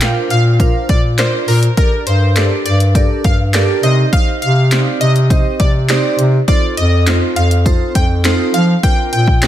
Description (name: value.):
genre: dance-pop.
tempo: 102 BPM.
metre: 4/4.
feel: straight.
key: unclear.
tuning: A4 = 440 Hz.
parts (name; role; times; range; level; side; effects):
plucky unison lead; melody; 0.0-9.5 s; Bb4 to G5; -20 LUFS; equal; analog delay.
glassy digital keys; accompaniment; 0.0-9.5 s; C4 to F5; -19 LUFS; right 3 dB; chorus, sidechain pumping.
dark bass clarinet; bass; 0.0-9.5 s; F2 to F3; -13 LUFS; equal; sidechain pumping.
punchy analog drum machine; drums; 0.0-9.5 s; handclaps, hi-hat, kick drum, snare drum; -15 LUFS; equal; overdrive.
room: light reverb.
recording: none.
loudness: -11 LUFS.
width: side -12 dB against mid.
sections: 0.0-9.5 A section.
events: none.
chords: 0.0 Bbadd9; 1.8 Gmadd9; 3.8 Cm; 6.5 F7; 8.8 Bbadd9.